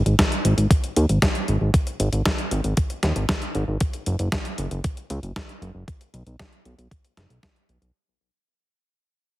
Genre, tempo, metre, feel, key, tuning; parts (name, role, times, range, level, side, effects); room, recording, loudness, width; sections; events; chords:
italo disco; 116 BPM; 4/4; straight; G# minor; A4 = 439 Hz
fat analog bass; bass; 0.0-7.9 s; F#1 to D#2; -21 LUFS; equal
clean 12-bit digital drum machine; drums; 0.1-7.9 s; hi-hat, snare drum; -25 LUFS; equal; overdrive
electronic kick drum; drums; 0.2-7.5 s; -22 LUFS; equal; overdrive
light reverb; heavily compressed radio sound; -20 LUFS; side -16 dB against mid
0.0-7.9 A section
fade-out 0.0-7.9